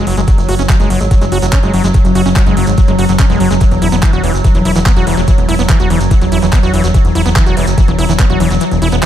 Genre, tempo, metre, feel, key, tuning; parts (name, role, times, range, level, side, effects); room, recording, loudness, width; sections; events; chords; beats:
psychedelic trance; 144 BPM; 4/4; straight; A4 = 439 Hz
evolving wavetable pad; sustained chords; 0.0-9.1 s; F#3; -16 LUFS; left 1 dB; chorus, built-in reverb, sidechain pumping
overdriven acid bass; riff; 0.0-9.1 s; E3 to F#4; -18 LUFS; right 1 dB; distortion, auto-pan, sidechain pumping, tape echo
plucky analog bass; bass; 0.0-9.0 s; E1 to G#1; -15 LUFS; equal
garage drum kit; drums; 0.1-9.1 s; handclaps, hi-hat; -21 LUFS; right 1 dB
shekere; percussion; 0.2-9.1 s; -30 LUFS; right 4 dB
electronic kick drum; drums; 0.3-8.3 s; -10 LUFS; equal
little or no reverb; -9 LUFS; side -11 dB against mid
0.0-9.1 A section
kick drops out 8.6-9.1
0.0 F#5; 3.6 E5
| 0.28 0.69 1.11 1.53 | 1.94 2.36 2.78 3.19 | 3.61 4.03 4.44 4.86 | 5.28 5.69 6.11 6.53 | 6.94 7.36 7.78 8.19 | 8.61 9.03